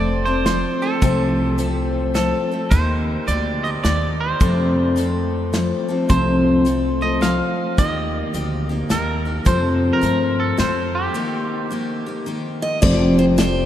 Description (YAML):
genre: honky-tonk and classic country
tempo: 107 BPM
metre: 3/4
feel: swing 65% on 8ths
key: F mixolydian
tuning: A4 = 442 Hz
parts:
  - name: twangy electric guitar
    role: second line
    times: 0.0-12.2 s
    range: G4 to F5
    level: -25 LUFS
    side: right 3 dB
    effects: tape echo
  - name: picked steel-string acoustic guitar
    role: accompaniment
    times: 0.0-13.7 s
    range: F2 to A4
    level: -20 LUFS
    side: left 2 dB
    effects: none
  - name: upright bass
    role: bass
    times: 0.0-13.7 s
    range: F1 to G2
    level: -22 LUFS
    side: equal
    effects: none
  - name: natural country drum kit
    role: drums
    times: 0.5-13.6 s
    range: crash cymbal, hi-hat, kick drum, snare drum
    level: -22 LUFS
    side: equal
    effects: none
  - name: picked steel-string acoustic guitar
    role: melody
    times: 12.6-13.7 s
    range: C5 to Eb5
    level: -24 LUFS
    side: equal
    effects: none
  - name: dark grand piano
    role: accompaniment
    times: 12.8-13.7 s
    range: F4 to C5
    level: -31 LUFS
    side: right 2 dB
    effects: none
room: wet cathedral reverb, RT60 6.4 s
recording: in a vast, echoing space, lossy compression artefacts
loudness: -17 LUFS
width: side -11 dB against mid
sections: 0.0-12.8 A section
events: clean electric guitar solo 0.0-12.8; break 11.1-12.8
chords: 0.0 F; 2.7 Eb; 4.4 F; 7.8 Eb; 9.5 F; 11.1 Eb; 12.8 Fadd9